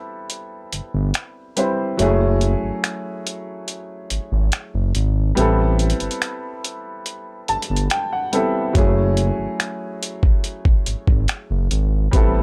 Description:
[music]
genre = contemporary R&B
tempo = 71 BPM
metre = 4/4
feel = straight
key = unclear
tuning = A4 = 440 Hz
[part]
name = clear grand piano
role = accompaniment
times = 0.0-12.4 s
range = F#3 to A5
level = -26 LUFS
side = equal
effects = none
[part]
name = dusty soul sampler-style drum kit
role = drums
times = 0.3-12.3 s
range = finger snaps, hi-hat, kick drum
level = -22 LUFS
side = equal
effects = overdrive
[part]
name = smooth synth bass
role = bass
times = 0.7-12.4 s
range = F#1 to A1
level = -21 LUFS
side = equal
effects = none
[sound]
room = little or no reverb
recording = dry, gritty hardware recording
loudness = -20 LUFS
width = mono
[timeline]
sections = 0.0-12.4 A section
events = break 0.0-8.8; grand piano fill 7.1-8.8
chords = 0.0 Am9; 2.0 F#m9; 5.4 Am9; 8.8 F#m9

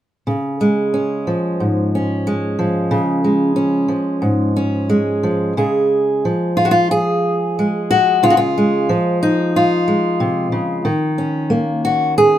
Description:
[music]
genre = folk, solo fingerstyle acoustic guitar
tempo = 91 BPM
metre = 4/4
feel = rubato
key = unclear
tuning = A4 = 440 Hz
[part]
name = fingerpicked steel-string acoustic guitar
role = solo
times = 0.3-12.4 s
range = Ab2 to Ab4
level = -14 LUFS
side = equal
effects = none
[sound]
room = light reverb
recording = minimal, uncompressed stereo recording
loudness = -15 LUFS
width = side -11 dB against mid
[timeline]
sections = 0.3-5.6 A section; 5.6-12.4 B section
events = none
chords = 0.3 Db; 10.9 Ebm7

